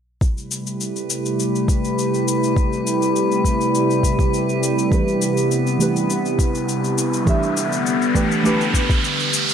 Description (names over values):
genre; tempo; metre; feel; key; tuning
organic downtempo; 102 BPM; 4/4; straight; A minor; A4 = 441 Hz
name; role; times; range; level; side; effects
warbly tape-like pad; sustained chords; 0.2-9.5 s; C3 to G4; -20 LUFS; right 1 dB; chorus, built-in reverb, sidechain pumping
cabasa; drums; 0.2-9.5 s; none; -28 LUFS; left 6 dB; none
electronic kick drum; drums; 0.2-9.0 s; none; -19 LUFS; equal; none
drifting glass-harmonics texture; texture; 1.0-9.5 s; B4; -27 LUFS; left 3 dB; chorus, built-in reverb
deep mellow chord stab; accompaniment; 4.9-9.5 s; E3 to E5; -22 LUFS; right 2 dB; chorus, phaser, sidechain pumping, tape echo
riser; sound effects; 6.7-9.5 s; none; -23 LUFS; equal; none
room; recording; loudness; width
moderate lush hall reverb, RT60 2.7 s; faint mains hum; -17 LUFS; side -8 dB against mid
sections
0.2-9.5 A section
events
riser 6.7-9.5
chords
0.2 Am7; 4.9 Cmaj7; 7.3 G